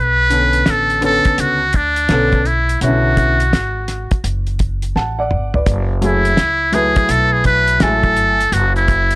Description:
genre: hip hop, jazz-hop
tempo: 84 BPM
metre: 4/4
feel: swing 64% on 16ths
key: F# minor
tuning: A4 = 441 Hz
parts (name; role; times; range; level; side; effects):
- trumpet with metal mute; melody; 0.0-9.2 s; D4 to B4; -15 LUFS; equal; none
- upright bass; bass; 0.0-9.2 s; F#1 to D2; -19 LUFS; equal; transformer saturation
- warm upright piano; accompaniment; 0.3-8.4 s; C#3 to A5; -19 LUFS; left 1 dB; none
- cloth-damped thuddy drum kit; drums; 0.3-9.2 s; hi-hat, kick drum, snare drum, toms; -18 LUFS; equal; none
room: studio reverb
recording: dry, gritty hardware recording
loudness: -12 LUFS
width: side -22 dB against mid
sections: 0.0-5.7 A section; 5.7-9.2 B section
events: drum fill 5.0-5.7; muted trumpet solo 5.7-9.2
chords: 0.0 Bm9

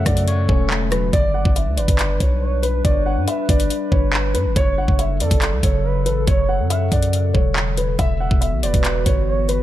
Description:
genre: hip hop, drill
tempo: 140 BPM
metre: 4/4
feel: half-time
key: unclear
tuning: A4 = 441 Hz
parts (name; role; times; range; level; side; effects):
- dark concert grand piano; melody; 0.0-9.6 s; B4 to F#5; -24 LUFS; equal; ping-pong delay
- gliding portamento lead; second line; 0.0-9.6 s; A4 to F#5; -29 LUFS; right 4 dB; chorus, ping-pong delay
- electric guitar at the edge of break-up; accompaniment; 0.0-1.1 s; C#3 to C#5; -25 LUFS; left 1 dB; none
- warbly tape-like pad; sustained chords; 0.0-9.6 s; C#3 to B4; -27 LUFS; left 2 dB; chorus, built-in reverb
- long sustained 808-style bass; bass; 0.0-9.6 s; E1 to G2; -20 LUFS; equal; none
- drill drum kit; drums; 0.1-9.6 s; handclaps, hi-hat, kick drum, rim click; -19 LUFS; equal; none
room: little or no reverb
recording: lossy compression artefacts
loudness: -16 LUFS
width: side -13 dB against mid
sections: 0.0-1.1 A section; 1.1-9.6 B section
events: none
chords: 0.0 F#m; 1.1 G; 4.6 F#m; 8.0 Esus2

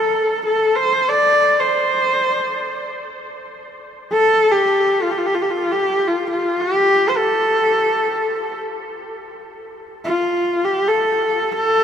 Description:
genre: mongolian traditional, Mongolian folk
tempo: free time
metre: none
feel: none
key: unclear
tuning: A4 = 439 Hz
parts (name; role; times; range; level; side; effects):
- bright horsehead fiddle; solo; 0.0-11.8 s; F4 to D5; -16 LUFS; equal; none
room: wet huge ambient reverb, RT60 7.8 s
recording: heard from further back in the room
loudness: -15 LUFS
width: side -8 dB against mid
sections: 0.0-11.8 A section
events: none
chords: none

